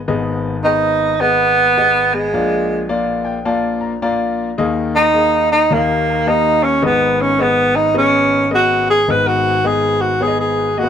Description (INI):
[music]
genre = soul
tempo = 107 BPM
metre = 4/4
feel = swing 62% on 8ths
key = G# minor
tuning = A4 = 440 Hz
[part]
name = warm grand piano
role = accompaniment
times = 0.0-10.9 s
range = G#1 to A#5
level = -19 LUFS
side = left 3 dB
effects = none
[part]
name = breathy tenor saxophone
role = melody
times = 0.6-10.9 s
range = G#3 to B4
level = -13 LUFS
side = right 1 dB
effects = none
[sound]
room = moderate studio reverb, RT60 0.5 s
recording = none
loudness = -13 LUFS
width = side -8 dB against mid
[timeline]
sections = 0.1-9.1 A section; 9.1-10.9 B section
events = tenor saxophone solo 0.1-9.1; grand piano fill 2.9-4.6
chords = 0.1 G#m; 2.3 A#; 4.6 D#sus4; 5.7 D#; 6.8 G#m